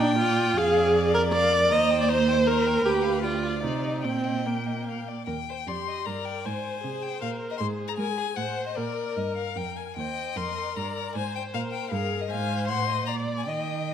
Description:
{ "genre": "quick classical-period movement for string quartet", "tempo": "154 BPM", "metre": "3/4", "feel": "rubato", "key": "Eb major", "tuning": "A4 = 440 Hz", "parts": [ { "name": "warm violin", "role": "melody", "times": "0.0-13.9 s", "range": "C5 to C6", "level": "-33 LUFS", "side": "left 10 dB", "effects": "none" }, { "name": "warm violin", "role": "second line", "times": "0.0-13.9 s", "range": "Ab4 to G5", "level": "-33 LUFS", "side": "left 3 dB", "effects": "none" }, { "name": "warm viola", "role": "accompaniment", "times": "0.0-13.9 s", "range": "Bb3 to Eb5", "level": "-27 LUFS", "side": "right 1 dB", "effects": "none" }, { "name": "warm cello", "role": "bass", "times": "0.0-13.9 s", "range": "D2 to Ab3", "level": "-30 LUFS", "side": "right 4 dB", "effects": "none" } ], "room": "moderate scoring stage reverb, RT60 1.8 s", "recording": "none", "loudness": "-24 LUFS", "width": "side -9 dB against mid", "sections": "0.0-5.3 A section; 5.3-13.9 B section", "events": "none", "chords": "0.0 Bb; 0.6 Bb7/F; 1.7 Eb; 2.9 G7/D; 3.6 Cm; 4.0 Eb/Bb; 4.9 Bb; 5.3 Eb; 6.5 Abadd9; 8.4 Adim7; 8.8 Bb; 10.0 Eb; 11.2 Ab; 12.3 Fm/Ab; 12.7 Adim7; 13.1 Bb" }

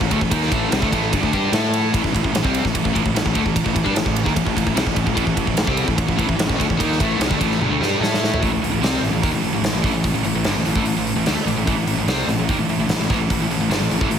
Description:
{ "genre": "hard rock", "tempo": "148 BPM", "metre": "4/4", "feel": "straight", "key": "A minor", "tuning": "A4 = 440 Hz", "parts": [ { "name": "crunchy overdriven guitar", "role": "riff", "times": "0.0-14.2 s", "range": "G2 to A4", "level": "-22 LUFS", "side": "left 7 dB", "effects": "none" }, { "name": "scooped high-gain guitar", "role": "riff", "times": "0.0-14.2 s", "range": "G2 to A4", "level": "-23 LUFS", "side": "right 12 dB", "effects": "distortion" }, { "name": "fuzz fingered electric bass", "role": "bass", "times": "0.0-14.2 s", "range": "G1 to A2", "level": "-24 LUFS", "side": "right 1 dB", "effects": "overdrive" }, { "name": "big rock drum kit", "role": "drums", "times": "0.0-14.2 s", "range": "hi-hat, kick drum, ride cymbal, snare drum, toms", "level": "-22 LUFS", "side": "equal", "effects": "none" } ], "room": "moderate large studio reverb, RT60 0.9 s, small room ambience", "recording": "heavily compressed radio sound, multiband compression", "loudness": "-17 LUFS", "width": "side -8 dB against mid", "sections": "0.0-8.4 A section; 8.4-14.2 B section", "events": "drum fill 7.6-8.4", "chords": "0.0 Am" }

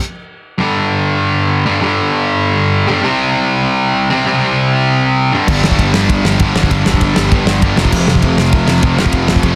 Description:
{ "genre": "punk rock", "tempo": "196 BPM", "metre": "4/4", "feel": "straight", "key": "unclear", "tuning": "A4 = 440 Hz", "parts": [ { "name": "distorted electric guitar", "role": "riff", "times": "0.6-9.6 s", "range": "F2 to C4", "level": "-16 LUFS", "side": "equal", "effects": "distortion" }, { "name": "biting overdriven guitar", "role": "riff", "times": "5.5-9.6 s", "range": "F2 to G3", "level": "-23 LUFS", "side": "equal", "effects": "none" }, { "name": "sludgy distorted guitar", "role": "riff", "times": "5.5-9.6 s", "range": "F2 to G3", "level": "-21 LUFS", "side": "equal", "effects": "overdrive" }, { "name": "fuzz picked electric bass", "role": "bass", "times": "5.5-9.6 s", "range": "F1 to G1", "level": "-20 LUFS", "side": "equal", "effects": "overdrive" }, { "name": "loose indie drum kit", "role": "drums", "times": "5.5-9.5 s", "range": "crash cymbal, kick drum, ride cymbal, snare drum", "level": "-17 LUFS", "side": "equal", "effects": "none" } ], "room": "little or no reverb", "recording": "dense, heavily limited modern master", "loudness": "-13 LUFS", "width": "mono", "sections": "0.6-9.6 A section", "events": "stop 0.0-0.6", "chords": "0.0 N.C.; 0.6 G5; 3.0 C5; 5.3 G5; 7.8 F5" }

